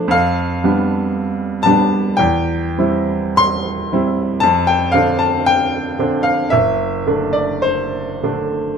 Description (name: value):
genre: classical, romantic character piece for solo piano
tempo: 46-60 BPM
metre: 4/4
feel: rubato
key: unclear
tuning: A4 = 444 Hz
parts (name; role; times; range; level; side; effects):
- clear baby grand piano; solo; 0.0-8.8 s; F#1 to C6; -14 LUFS; equal; none
room: light reverb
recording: dark, warm production, lossy compression artefacts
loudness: -14 LUFS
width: side -6 dB against mid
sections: 0.0-8.8 A section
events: none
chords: 0.1 G7/F; 2.2 C/E; 4.4 Dm7/F; 6.5 D7/F#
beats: | 0.11 1.14 2.18 3.39 | 4.43 5.47 6.53 7.64